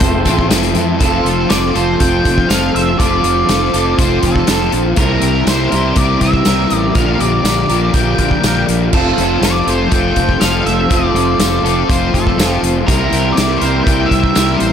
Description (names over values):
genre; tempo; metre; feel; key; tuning
rock, shoegaze and dream pop; 122 BPM; 4/4; straight; unclear; A4 = 440 Hz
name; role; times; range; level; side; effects
octave-fuzz lead guitar; melody; 0.0-14.7 s; A4 to G5; -19 LUFS; equal; distortion, slapback echo
brassy analog pad; sustained chords; 0.0-14.7 s; G4 to C6; -25 LUFS; right 1 dB; chorus, tremolo
electric guitar through a small old amp; riff; 0.0-14.7 s; Bb2 to Bb4; -19 LUFS; right 10 dB; reverse reverb
overdriven semi-hollow guitar; riff; 0.0-14.7 s; Bb2 to Bb4; -18 LUFS; left 13 dB; analog chorus
fuzz fingered electric bass; bass; 0.0-14.7 s; F1 to F2; -18 LUFS; equal; overdrive
loose indie drum kit; drums; 0.0-14.7 s; crash cymbal, hi-hat, kick drum, snare drum; -17 LUFS; equal; none
tambourine; percussion; 0.0-14.5 s; none; -26 LUFS; right 11 dB; none
room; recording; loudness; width
light reverb, small room reverb; none; -11 LUFS; side -8 dB against mid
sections
0.0-1.0 A section; 1.0-14.7 B section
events
none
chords
0.0 Fmaj7; 1.0 F; 5.0 C7; 7.0 Bb6; 8.9 F; 12.9 C7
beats
0.01 0.51 | 1.01 1.50 2.00 2.50 | 3.00 3.49 3.99 4.48 | 4.98 5.47 5.97 6.46 | 6.96 7.45 7.95 8.44 | 8.93 9.43 9.92 10.41 | 10.91 11.40 11.89 12.38 | 12.88 13.37 13.86 14.35